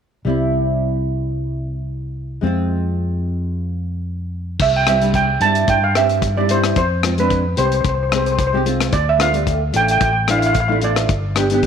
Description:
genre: calypso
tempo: 111 BPM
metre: 4/4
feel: swing 53% on 16ths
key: C major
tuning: A4 = 444 Hz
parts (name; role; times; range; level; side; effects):
- nylon-string guitar; accompaniment; 0.2-11.7 s; G3 to G4; -21 LUFS; equal; double-tracked left and right
- fingered electric bass; bass; 0.2-11.7 s; G1 to G2; -21 LUFS; equal; none
- steel pan; melody; 4.6-11.7 s; B4 to A5; -18 LUFS; right 2 dB; slapback echo
- modern studio drum kit; drums; 4.6-11.7 s; crash cymbal, hi-hat, kick drum, rim click; -22 LUFS; left 4 dB; none
room: light reverb, studio reverb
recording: 1960s-style stereo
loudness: -16 LUFS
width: side -7 dB against mid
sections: 0.3-4.6 A section; 4.6-11.7 B section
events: none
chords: 0.3 C; 2.4 Fm; 4.6 C; 6.8 Fm; 8.9 Dm; 11.1 G

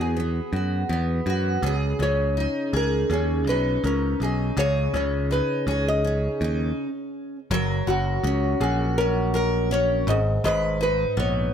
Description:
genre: acoustic pop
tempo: 82 BPM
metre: 4/4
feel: swing 55% on 16ths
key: F# major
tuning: A4 = 443 Hz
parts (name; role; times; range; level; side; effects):
- flamenco guitar; melody; 0.0-11.5 s; F#4 to D#5; -26 LUFS; left 1 dB; none
- picked steel-string acoustic guitar; accompaniment; 0.0-11.5 s; G#2 to B4; -26 LUFS; equal; double-tracked left and right
- modern bright picked electric bass; bass; 0.0-11.5 s; F#1 to F#2; -25 LUFS; equal; none
room: small room ambience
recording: none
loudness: -21 LUFS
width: side -8 dB against mid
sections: 0.0-7.5 A section; 7.5-11.5 B section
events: stop 6.8-7.5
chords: 0.0 Eadd9; 1.6 C#sus2; 7.5 F#; 10.1 G#m

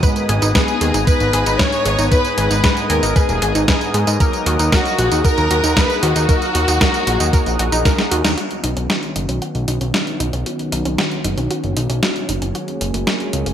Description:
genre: italo disco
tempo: 115 BPM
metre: 4/4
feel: straight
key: unclear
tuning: A4 = 439 Hz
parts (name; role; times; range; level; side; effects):
- lush unison pad; sustained chords; 0.0-13.5 s; D#3 to D#6; -25 LUFS; equal; chorus
- analog pluck; arpeggios; 0.0-13.5 s; A#3 to B4; -24 LUFS; right 1 dB; chorus, vintage 12-bit sampler grit, digital delay
- mellow synth brass; stabs; 0.0-8.3 s; G#2 to A#5; -24 LUFS; left 3 dB; chorus, phaser, digital delay
- clean 12-bit digital drum machine; drums; 0.0-13.5 s; hi-hat, snare drum, tambourine; -21 LUFS; equal; gated reverb
- electronic kick drum; drums; 0.0-8.0 s; none; -16 LUFS; equal; none
- fat analog bass; bass; 0.3-13.5 s; D#1 to G#2; -20 LUFS; equal; none
- dark studio violin section; melody; 0.6-7.9 s; F#4 to C#5; -21 LUFS; left 1 dB; digital delay
room: moderate plate reverb, RT60 2.2 s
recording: bright 1980s-style digital production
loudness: -14 LUFS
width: side -9 dB against mid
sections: 0.0-8.4 A section; 8.4-13.5 B section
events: drum fill 7.9-8.4; band accent 8.2; filter sweep on synth arpeggio sound 8.4-13.5; filter sweep on analog synth pad 8.4-13.5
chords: 0.0 G#m; 4.2 D#m; 8.4 Badd9; 12.6 F#add9

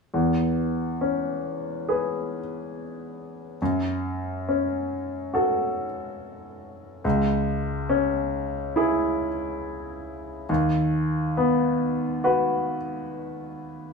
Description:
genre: classical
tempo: 69 BPM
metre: 4/4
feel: rubato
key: E major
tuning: A4 = 441 Hz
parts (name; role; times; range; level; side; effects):
- bright grand piano; accompaniment; 0.1-13.9 s; C#2 to B4; -24 LUFS; left 1 dB; none
room: moderate stone room reverb, RT60 1.0 s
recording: band playing live in one room, small room ambience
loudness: -23 LUFS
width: side -4 dB against mid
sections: 0.1-13.9 A section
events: none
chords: 0.1 E6; 3.6 F#m; 7.0 C#m; 10.5 B/D#

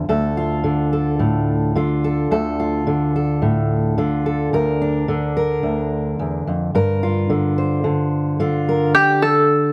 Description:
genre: folk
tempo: 108 BPM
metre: 4/4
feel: straight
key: D minor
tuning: A4 = 441 Hz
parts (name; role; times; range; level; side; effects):
- fingerpicked steel-string acoustic guitar; accompaniment; 0.0-9.7 s; D2 to C5; -20 LUFS; equal; none
- open-back banjo; arpeggios; 8.9-9.7 s; G4 to A4; -16 LUFS; equal; none
room: light reverb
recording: dark, warm production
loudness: -19 LUFS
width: mono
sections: 0.0-8.9 A section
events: none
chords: 0.1 Dm; 4.5 Bb/D; 6.7 Gm7; 8.9 D5

